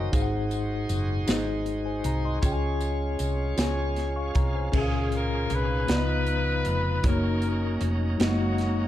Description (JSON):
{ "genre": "slow gospel", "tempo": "52 BPM (dotted quarters)", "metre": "6/8", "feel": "straight", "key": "Db major", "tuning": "A4 = 440 Hz", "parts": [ { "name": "mellow tine electric piano", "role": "accompaniment", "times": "0.0-8.9 s", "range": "Ab2 to Db6", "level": "-29 LUFS", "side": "left 2 dB", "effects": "fast stereo tremolo" }, { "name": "bright tonewheel organ", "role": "sustained chords", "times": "0.0-8.9 s", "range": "F3 to F5", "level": "-36 LUFS", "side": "right 3 dB", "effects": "slow rotary speaker, overdrive" }, { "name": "hollow-body short-scale fingered electric bass", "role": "bass", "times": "0.0-8.9 s", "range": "F1 to Db2", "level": "-28 LUFS", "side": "equal", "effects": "none" }, { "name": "crisp fusion drum kit", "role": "drums", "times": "0.1-8.8 s", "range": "crash cymbal, hi-hat, kick drum, snare drum", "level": "-28 LUFS", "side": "right 1 dB", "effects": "none" }, { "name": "tambourine", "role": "percussion", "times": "0.1-3.9 s", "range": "none", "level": "-43 LUFS", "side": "left 7 dB", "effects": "none" }, { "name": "warm horn section", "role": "melody", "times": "4.8-8.9 s", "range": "Bb3 to Cb5", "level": "-30 LUFS", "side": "left 2 dB", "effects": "none" } ], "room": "light reverb", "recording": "dark, warm production", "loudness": "-24 LUFS", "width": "side -13 dB against mid", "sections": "0.0-4.7 A section; 4.7-8.9 B section", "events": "tonewheel organ fill 3.6-4.7", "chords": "0.1 Ab7; 2.4 Db; 4.7 Db6; 5.9 Db13; 7.0 Gb6", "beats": "| 0.13 1.28 | 2.43 3.58 | 4.73 5.88 | 7.04 8.20" }